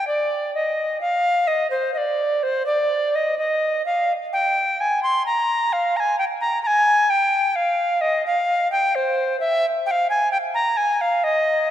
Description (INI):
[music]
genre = classical, baroque-style fantasia for unaccompanied recorder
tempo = 64 BPM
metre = 3/4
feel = rubato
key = unclear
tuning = A4 = 440 Hz
[part]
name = tenor recorder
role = solo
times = 0.0-11.7 s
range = C5 to C6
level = -18 LUFS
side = equal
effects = none
[sound]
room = wet church reverb, RT60 3.3 s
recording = none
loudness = -18 LUFS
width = side -11 dB against mid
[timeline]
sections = 0.0-11.7 A section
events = none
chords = none